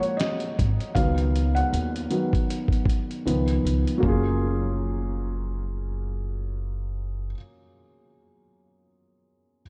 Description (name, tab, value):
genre	lo-fi hip hop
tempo	78 BPM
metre	4/4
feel	swing 57% on 16ths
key	F# major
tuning	A4 = 440 Hz
part	felt-muted upright piano	accompaniment	0.0-9.6 s	D#3 to A#5	-29 LUFS	equal	low-pass filter
part	dusty soul sampler-style drum kit	drums	0.0-4.2 s	hi-hat, kick drum, snare drum	-28 LUFS	equal	none
part	upright bass	bass	0.6-7.3 s	F#1 to D#2	-28 LUFS	equal	none
room	moderate church reverb, RT60 3.7 s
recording	dreamy mix soaked in reverb, cassette tape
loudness	-26 LUFS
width	mono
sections	0.0-4.0 A section; 4.0-7.1 B section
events	felt piano solo 0.0-4.0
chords	0.0 F#maj9; 1.0 C#9sus4; 4.0 F#maj9